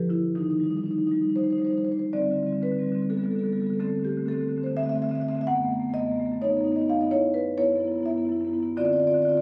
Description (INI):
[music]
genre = classical, contemporary piece for solo marimba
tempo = 252 BPM (eighths)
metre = 7/8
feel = rubato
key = unclear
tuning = A4 = 440 Hz
[part]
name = marimba with soft mallets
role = solo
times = 0.0-9.4 s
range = F#2 to F#5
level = -25 LUFS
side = equal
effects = none
[sound]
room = moderate stone room reverb, RT60 1.2 s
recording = recorded on a phone in the room, club reverb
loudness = -26 LUFS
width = mono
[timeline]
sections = 0.0-2.1 A section; 2.1-9.4 B section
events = none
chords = 0.3 Ebmaj7; 2.1 D7sus4; 3.1 Gadd9/D; 3.8 Am/D; 5.5 F#madd11; 6.4 Badd9/F#; 7.1 C#m7/F#; 8.8 Dm7